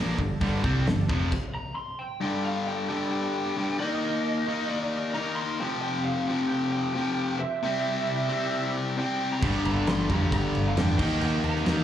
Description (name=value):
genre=hard rock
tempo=133 BPM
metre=4/4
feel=straight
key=G minor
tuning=A4 = 440 Hz
part: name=overdriven tonewheel organ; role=sustained chords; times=0.0-11.8 s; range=F3 to F5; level=-38 LUFS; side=right 3 dB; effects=slow rotary speaker, chorus vibrato
part: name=cranked stack guitar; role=riff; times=0.0-1.3, 9.4-11.8 s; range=F2 to Eb4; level=-31 LUFS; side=right 7 dB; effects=overdrive, slapback echo
part: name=distorted electric guitar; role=riff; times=0.0-11.8 s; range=F2 to Eb4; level=-28 LUFS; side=left 3 dB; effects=overdrive, slapback echo
part: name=picked electric bass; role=bass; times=0.0-1.3, 9.4-11.8 s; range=F1 to F2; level=-28 LUFS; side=equal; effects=none
part: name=big rock drum kit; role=drums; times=0.2-1.4, 9.4-11.8 s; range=crash cymbal, hi-hat, kick drum, snare drum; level=-29 LUFS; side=equal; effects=none
part: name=lead guitar through a small cranked amp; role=melody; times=1.5-11.8 s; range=Eb5 to C6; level=-32 LUFS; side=right 3 dB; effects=overdrive, slapback echo, tape echo
room=light reverb, small room reverb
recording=live gig heard through the venue's PA, club reverb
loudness=-24 LUFS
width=side -10 dB against mid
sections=0.0-2.2 A section; 2.2-11.8 B section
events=stop 1.3-2.2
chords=0.0 Gm; 1.1 F5; 1.5 N.C.; 2.2 G5; 3.8 Eb5; 5.6 F5; 7.6 C; 9.4 G5; 11.0 Eb5